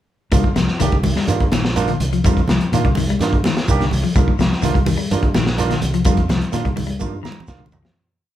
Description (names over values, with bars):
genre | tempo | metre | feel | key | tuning
afrobeat | 126 BPM | 4/4 | straight | C minor | A4 = 445 Hz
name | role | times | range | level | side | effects
barky tine electric piano | accompaniment | 0.3-7.9 s | Bb3 to Bb5 | -25 LUFS | right 6 dB | overdrive
clean electric guitar | arpeggios | 0.3-7.9 s | D3 to G3 | -22 LUFS | left 6 dB | none
fingered electric bass | bass | 0.3-7.8 s | Bb1 to Bb2 | -22 LUFS | equal | none
crunchy breakbeat drum kit | drums | 0.3-8.0 s | hi-hat, kick drum, snare drum, toms | -20 LUFS | equal | none
shekere | percussion | 0.3-7.8 s | none | -28 LUFS | right 3 dB | none
congas | percussion | 0.6-8.0 s | none | -26 LUFS | right 2 dB | none
room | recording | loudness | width
moderate large studio reverb, RT60 0.8 s | band playing live in one room | -15 LUFS | side -12 dB against mid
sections
0.3-8.0 groove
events
fade-out 6.1-8.0; drum fill 7.0-8.0; tine electric piano fill 7.0-8.0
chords
0.3 Cm11